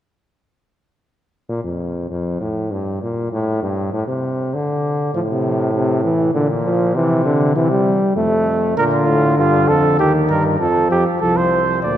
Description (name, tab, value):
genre	classical, imitative canzona for brass ensemble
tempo	99 BPM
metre	3/4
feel	straight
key	unclear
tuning	A4 = 438 Hz
part	clear bass trombone	bass	1.5-12.0 s	C2 to D3	-20 LUFS	equal	none
part	warm trombone	accompaniment	5.1-12.0 s	Bb2 to A3	-17 LUFS	equal	none
part	mellow flugelhorn	second line	8.8-12.0 s	F4 to D5	-17 LUFS	right 2 dB	none
room	wet church reverb, RT60 2.5 s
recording	dark, warm production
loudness	-15 LUFS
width	side -11 dB against mid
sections	1.5-12.0 A section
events	none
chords	1.5 N.C.; 2.7 Gm; 3.3 Gsus24; 4.5 N.C.; 5.1 F/A (rootless); 6.4 Bb; 7.0 C; 8.2 F; 8.8 Bb; 10.0 Eb; 10.6 F